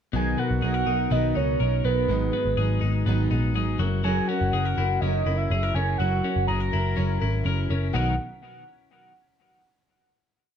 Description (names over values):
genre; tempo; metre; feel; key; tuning
indie pop; 123 BPM; 4/4; straight; B major; A4 = 442 Hz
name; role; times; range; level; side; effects
fingerpicked steel-string acoustic guitar; accompaniment; 0.1-8.1 s; G#2 to A#4; -31 LUFS; right 5 dB; none
twelve-string electric guitar; arpeggios; 0.1-8.1 s; G#2 to A#4; -28 LUFS; left 8 dB; none
vintage muted picked electric bass; bass; 0.1-8.2 s; F#1 to C#2; -25 LUFS; equal; none
soft octave-layered synth lead; melody; 0.2-8.2 s; B4 to A#5; -28 LUFS; right 3 dB; chorus, phaser
room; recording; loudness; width
moderate club reverb, RT60 0.7 s; dark, warm production; -22 LUFS; side -8 dB against mid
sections
0.1-7.9 verse; 7.9-9.9 final chord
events
none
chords
0.1 Bmaj7; 2.1 G#m7; 3.8 F#7; 7.9 Bmaj7